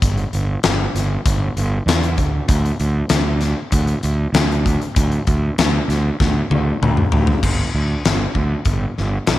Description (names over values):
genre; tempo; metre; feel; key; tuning
classic rock; 97 BPM; 4/4; straight; unclear; A4 = 440 Hz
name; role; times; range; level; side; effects
fuzz fingered electric bass; bass; 0.0-9.4 s; G1 to E2; -18 LUFS; right 1 dB; overdrive
huge arena drum kit; drums; 0.0-9.4 s; crash cymbal, hi-hat, kick drum, snare drum, toms; -19 LUFS; left 2 dB; none
room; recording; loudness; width
light reverb; 1960s-style stereo; -16 LUFS; side -15 dB against mid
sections
0.0-7.4 A section; 7.4-9.4 B section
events
drum fill 6.2-7.4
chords
none